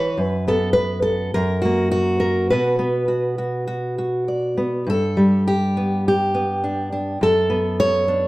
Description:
folk, solo fingerstyle acoustic guitar; 103 BPM; 4/4; rubato; B minor; A4 = 440 Hz
fingerpicked steel-string acoustic guitar; solo; 0.0-8.3 s; F#2 to D5; -18 LUFS; equal
moderate large studio reverb, RT60 0.8 s; dark, warm production; -18 LUFS; side -19 dB against mid
0.0-4.9 A section; 4.9-8.3 B section
0.2 B5/F#; 1.3 F#; 2.5 Bm; 4.9 G; 7.2 Bm7/F#

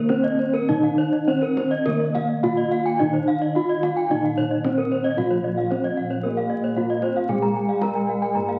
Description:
Balinese gamelan; 101-113 BPM; 4/4; straight; Bb slendro; A4 = 440 Hz
gamelan-type bronze metallophone; melody; 0.0-8.6 s; Bb3 to Bb4; -25 LUFS; equal
gamelan-type bronze metallophone; accompaniment; 0.0-8.6 s; Eb3-35c to Bb3; -32 LUFS; equal
gamelan-type bronze metallophone; arpeggios; 0.0-8.5 s; Bb4 to Bb5; -30 LUFS; equal
gamelan-type bossed gongs; bass; 0.0-8.6 s; Bb1 to Ab4-45c; -33 LUFS; equal
kendang; percussion; 0.1-8.6 s; -38 LUFS; equal
gamelan-type bronze metallophone; arpeggios; 0.2-8.6 s; Bb4 to Bb5; -31 LUFS; equal
mellow French horn; second line; 6.2-8.6 s; Ab3-48c to C4+26c; -32 LUFS; equal
wet large studio reverb, RT60 1.5 s; very old 78 rpm record, vinyl crackle; -22 LUFS; mono
0.0-5.2 A section; 5.2-8.6 B section

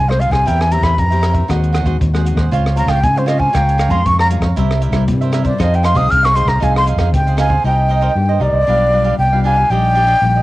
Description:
samba and choro; 117 BPM; 4/4; straight; F minor; A4 = 440 Hz
breathy jazz flute; melody; 0.0-10.4 s; C5 to F6; -15 LUFS; equal; cassette tape, plate reverb
nylon-string guitar; accompaniment; 0.0-10.4 s; G2 to Ab4; -24 LUFS; left 6 dB; cassette tape
fingered electric bass; bass; 0.0-10.4 s; Bb1 to Db3; -15 LUFS; equal
cavaquinho; accompaniment; 0.1-10.4 s; D4 to Bb5; -23 LUFS; right 7 dB; cassette tape, plate reverb
compact cocktail drum kit; drums; 0.1-7.6 s; hi-hat, kick drum, rim click; -22 LUFS; equal; cassette tape
light reverb; home recording on cassette; -12 LUFS; side -17 dB against mid
0.0-7.6 A section; 7.6-10.4 B section
flute solo 0.0-7.6
0.5 C7/E; 1.5 Ab7/Eb; 2.5 Dbmaj7; 3.5 Bbm7/Db; 4.6 C7; 5.6 Fm7; 7.6 Cm7; 8.7 G7/B; 9.7 Ebmaj7/Bb

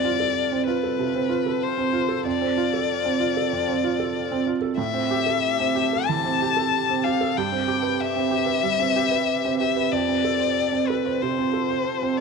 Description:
neoclassical piano and strings; 94 BPM; 4/4; rubato; A4 = 441 Hz
rich violin; melody; 0.0-12.2 s; B4 to A5; -24 LUFS; left 12 dB
felt-muted upright piano; accompaniment; 0.0-12.2 s; F2 to C5; -24 LUFS; right 8 dB
deep dark ambient pad; sustained chords; 0.0-12.2 s; C4 to B4; -34 LUFS; left 1 dB; chorus, built-in reverb
light reverb, small room reverb; 1960s-style stereo with parts hard left and right; -21 LUFS; side -5 dB against mid
0.0-12.2 A section
0.0 F6; 4.8 Am7; 7.4 Cmaj7/G; 9.9 F6

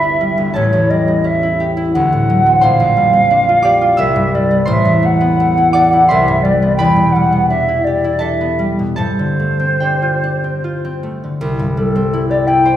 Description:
classical, impressionist duo for flute and harp; 72-89 BPM; 3/4; rubato; C major; A4 = 441 Hz
mellow hollow silver concert flute; melody; 0.0-12.8 s; A4 to G5; -14 LUFS; equal
concert harp; accompaniment; 0.0-12.8 s; G1 to E6; -15 LUFS; equal
wet recital hall reverb, RT60 1.5 s; heard from further back in the room; -11 LUFS; side -11 dB against mid
0.0-11.4 A section; 11.4-12.8 B section
0.0 G6; 0.6 A9; 2.0 D9; 2.6 Bb69; 4.0 Cmaj9; 4.7 Amadd9; 6.1 Cmaj9; 6.8 Em7; 9.0 G9sus4; 11.4 C6

